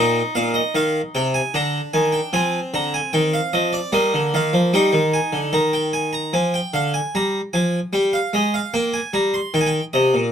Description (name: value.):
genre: classical, baroque-style 3-part fugue for harpsichord.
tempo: 75 BPM.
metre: 4/4.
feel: straight.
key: unclear.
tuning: A4 = 440 Hz.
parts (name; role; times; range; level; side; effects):
harpsichord; solo; 0.0-10.3 s; Bb2 to C6; -18 LUFS; equal; none.
room: light reverb.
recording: close, detailed microphones.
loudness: -18 LUFS.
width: side -8 dB against mid.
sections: 0.0-6.3 A section; 6.3-10.3 B section.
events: none.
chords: 0.0 Eb/Bb; 1.5 Bb7/D; 6.3 Ddim; 7.9 Gm; 9.5 Cm7.